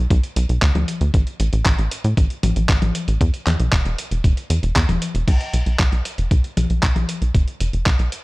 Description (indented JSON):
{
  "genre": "italo disco",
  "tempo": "116 BPM",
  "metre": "4/4",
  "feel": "straight",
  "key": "unclear",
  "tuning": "A4 = 440 Hz",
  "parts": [
    { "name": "tight sequencer bass", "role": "bass", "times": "0.0-8.1 s", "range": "E1 to A2", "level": "-19 LUFS", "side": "equal", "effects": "none" },
    { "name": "dusty soul sampler-style drum kit", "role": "drums", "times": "0.1-8.2 s", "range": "crash cymbal, handclaps, hi-hat, toms", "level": "-24 LUFS", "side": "left 1 dB", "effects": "none" },
    { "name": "electronic kick drum", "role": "drums", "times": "0.1-8.0 s", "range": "none", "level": "-17 LUFS", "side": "equal", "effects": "none" }
  ],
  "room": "little or no reverb",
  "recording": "dry, gritty hardware recording",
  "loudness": "-17 LUFS",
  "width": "side -22 dB against mid",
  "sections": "0.0-5.3 A section; 5.3-8.2 B section",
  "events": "none",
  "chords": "none",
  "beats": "0.10 0.62 | 1.14 1.66 2.17 2.69 | 3.21 3.73 4.24 4.76 | 5.28 5.79 6.31 6.83 | 7.35 7.86"
}